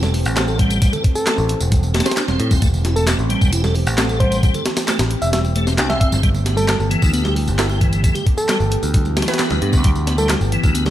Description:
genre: breakbeat, breaks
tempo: 133 BPM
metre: 4/4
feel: straight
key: A minor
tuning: A4 = 444 Hz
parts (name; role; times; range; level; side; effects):
- warbly tape-like pad; sustained chords; 0.0-10.9 s; E3 to G4; -27 LUFS; right 1 dB; chorus, built-in reverb, sidechain pumping
- tonewheel organ; riff; 0.0-10.9 s; E3 to A4; -24 LUFS; equal; chorus vibrato, slow rotary speaker, tube saturation, ping-pong delay
- picked electric bass; bass; 0.0-10.9 s; E1 to A2; -19 LUFS; equal; none
- breakbeat sampler-style drum kit; drums; 0.0-10.9 s; hi-hat, kick drum, snare drum; -19 LUFS; equal; none
- electronic tambourine and handclaps; drums; 0.0-10.9 s; none; -27 LUFS; equal; overdrive
- congas; percussion; 0.0-10.9 s; none; -30 LUFS; right 3 dB; none
- orchestra-hit-like synth stab; stabs; 0.4-4.0, 7.6-10.9 s; B3 to C5; -27 LUFS; right 1 dB; built-in reverb, ping-pong delay
- soft struck synth lead; melody; 1.2-10.3 s; A4 to E5; -25 LUFS; equal; chorus, old record sound, cassette tape, ping-pong delay
room: little or no reverb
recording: lossy compression artefacts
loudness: -15 LUFS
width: side -12 dB against mid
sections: 0.0-10.9 A section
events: none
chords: 0.0 Am7; 6.2 G69

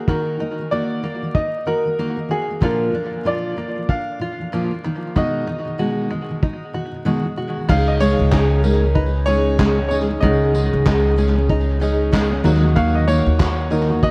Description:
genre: acoustic pop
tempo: 95 BPM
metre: 4/4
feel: swing 60% on 16ths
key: unclear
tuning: A4 = 439 Hz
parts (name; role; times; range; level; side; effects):
- warm upright piano; melody; 0.0-14.1 s; Ab4 to F5; -26 LUFS; equal; tape echo
- fingerpicked steel-string acoustic guitar; accompaniment; 0.0-14.1 s; Bb2 to Ab4; -24 LUFS; equal; tape echo
- open-back banjo; arpeggios; 0.0-14.1 s; D3 to Gb4; -31 LUFS; equal; tape echo
- cloth-damped thuddy drum kit; drums; 0.1-14.1 s; crash cymbal, handclaps, kick drum, tambourine; -24 LUFS; equal; none
- reed electric piano; accompaniment; 7.7-14.1 s; Bb3 to Gb5; -30 LUFS; equal; none
- upright bass; bass; 7.7-14.1 s; Db2 to Eb2; -21 LUFS; equal; none
room: light reverb, small room ambience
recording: echo-heavy mix, vinyl crackle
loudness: -19 LUFS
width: mono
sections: 0.0-7.7 A section; 7.7-14.1 B section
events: none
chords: 0.0 Ebm; 2.6 Bb; 4.8 B6; 7.7 Dbsus2; 12.4 Ebm

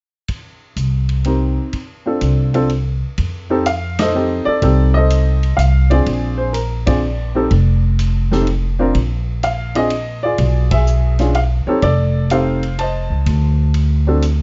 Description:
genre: jazz piano trio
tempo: 125 BPM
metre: 3/4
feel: swing 68% on 8ths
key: F mixolydian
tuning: A4 = 440 Hz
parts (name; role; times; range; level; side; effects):
- swinging big-band drum kit; drums; 0.3-14.4 s; hi-hat, kick drum, ride cymbal, snare drum; -29 LUFS; equal; none
- upright bass; bass; 0.8-14.4 s; F1 to F2; -18 LUFS; equal; none
- warm baby grand piano; melody; 1.3-14.2 s; C4 to A5; -21 LUFS; equal; none
room: little or no reverb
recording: nothing above 7.6 kHz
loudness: -17 LUFS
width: mono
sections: 0.3-3.2 A section; 3.2-14.4 B section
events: band accent 3.9, 6.8, 10.6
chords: 0.3 Cm7; 3.2 F7; 6.1 Bb7; 7.5 N.C.; 8.9 Bb; 10.4 Bdim7; 11.8 F7; 13.3 D7(no3)

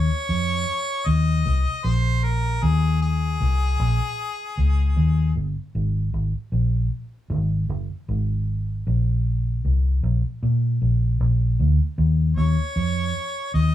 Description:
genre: roots reggae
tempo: 77 BPM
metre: 4/4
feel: straight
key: unclear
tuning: A4 = 443 Hz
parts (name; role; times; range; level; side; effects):
- clear harmonica; melody; 0.0-5.3, 12.4-13.7 s; Ab4 to Eb5; -27 LUFS; left 1 dB; none
- vintage muted fingered electric bass; bass; 0.0-13.7 s; Gb1 to Bb2; -20 LUFS; equal; none
room: moderate small room reverb, RT60 0.6 s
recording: band playing live in one room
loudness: -20 LUFS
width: side -12 dB against mid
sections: 0.0-13.7 A section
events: none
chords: 0.0 Eb5; 5.7 N.C.; 12.0 Eb5

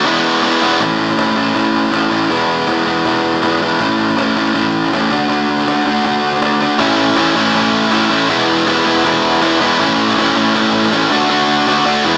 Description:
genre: punk rock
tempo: 160 BPM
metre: 4/4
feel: straight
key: unclear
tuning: A4 = 439 Hz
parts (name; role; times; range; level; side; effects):
- overdriven electric guitar; riff; 0.0-12.2 s; A2 to F#4; -15 LUFS; equal; none
- tight distorted guitar; riff; 0.0-0.8, 6.8-12.2 s; A2 to F#4; -18 LUFS; equal; distortion
- cajon; drums; 0.4-11.8 s; none; -28 LUFS; equal; none
- overdriven picked electric bass; bass; 0.8-12.2 s; E1 to E2; -32 LUFS; equal; none
room: light reverb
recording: small speaker sound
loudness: -14 LUFS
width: mono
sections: 0.8-12.2 A section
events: break 0.0-0.8; drum fill 0.4-0.8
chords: 0.0 E; 0.8 A; 2.3 E; 3.8 A; 5.1 D; 6.8 A; 8.3 E; 9.8 A; 11.1 D

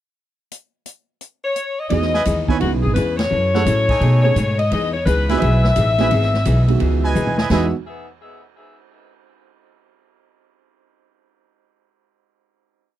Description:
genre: jazz, big band swing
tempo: 172 BPM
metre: 4/4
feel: swing 65% on 8ths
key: E major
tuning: A4 = 440 Hz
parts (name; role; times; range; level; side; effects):
- swinging big-band drum kit; drums; 0.5-7.6 s; hi-hat, kick drum, ride cymbal, snare drum, splash cymbal, toms; -27 LUFS; equal; none
- edgy saxophone section; melody; 1.4-7.7 s; B3 to E5; -21 LUFS; left 3 dB; tape echo
- dark upright piano; accompaniment; 1.9-7.7 s; D#3 to B4; -22 LUFS; right 12 dB; none
- hollow-body jazz guitar; accompaniment; 1.9-7.7 s; B2 to A4; -26 LUFS; left 6 dB; none
- upright bass; bass; 1.9-7.7 s; G#1 to B2; -18 LUFS; equal; none
- clear trumpet section; stabs; 2.1-7.7 s; D#4 to G#5; -23 LUFS; right 3 dB; none
room: little or no reverb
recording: dry, close 1970s-style studio recording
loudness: -15 LUFS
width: side -13 dB against mid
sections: 0.5-1.9 pickup bar; 1.9-7.5 A section; 7.5-8.9 final chord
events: band accent 3.1; drum fill 7.2-7.5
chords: 0.5 N.C.; 1.9 Emaj7; 2.6 C#m7; 3.3 F#m7; 4.0 B13; 4.7 Emaj7

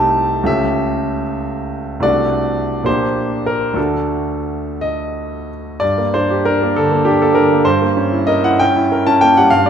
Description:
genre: classical, romantic character piece for solo piano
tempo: 54-84 BPM (dotted quarters)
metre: 6/8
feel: rubato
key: G minor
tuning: A4 = 441 Hz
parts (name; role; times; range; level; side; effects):
- bright grand piano; solo; 0.0-9.7 s; Bb1 to A5; -14 LUFS; equal; none
room: wet concert hall reverb, RT60 1.8 s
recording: none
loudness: -14 LUFS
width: side -8 dB against mid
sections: 0.0-5.8 A section; 5.8-9.7 B section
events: none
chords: 0.5 A7/C#; 2.0 D7/C; 2.9 Gm/Bb; 3.8 D; 5.8 Gm; 7.6 Gdim7

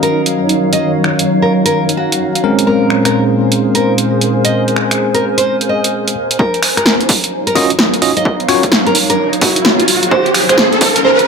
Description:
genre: UK garage, two-step garage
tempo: 129 BPM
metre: 4/4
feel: swing 64% on 16ths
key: Eb dorian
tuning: A4 = 440 Hz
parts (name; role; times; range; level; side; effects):
- nylon-string guitar; melody; 0.0-11.2 s; Gb4 to Eb5; -18 LUFS; right 1 dB; ping-pong delay
- warm analog pad; sustained chords; 0.0-11.3 s; Bb2 to F5; -20 LUFS; left 1 dB; chorus, sidechain pumping
- bell-like tine electric piano; stabs; 0.0-8.6 s; Ab3 to F5; -16 LUFS; left 1 dB; medium stereo tremolo, dub echo
- punchy analog drum machine; drums; 0.0-11.3 s; finger snaps, hi-hat, snare drum; -14 LUFS; right 1 dB; overdrive
- granular cloud pad; texture; 0.0-11.3 s; Gb3 to Bb5; -18 LUFS; right 1 dB; built-in reverb, sidechain pumping
- saturated sub bass; bass; 6.4-11.3 s; none; barely audible; none; none
- electronic kick drum; drums; 6.4-10.9 s; none; -17 LUFS; equal; overdrive, high-pass filter on kick, high-pass filter on room
- riser; sound effects; 8.3-11.3 s; none; -16 LUFS; right 1 dB; none
room: moderate lush hall reverb, RT60 1.8 s, digital ambience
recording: high-pass filter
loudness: -10 LUFS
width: side -5 dB against mid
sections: 0.0-6.4 A section; 6.4-11.3 B section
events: filter sweep on analog synth pad 0.0-6.4; build-up 6.4-11.3; riser 8.3-11.3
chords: 0.0 Ebm9; 2.4 Bbm9; 6.4 Ebm9; 9.9 Bbm9

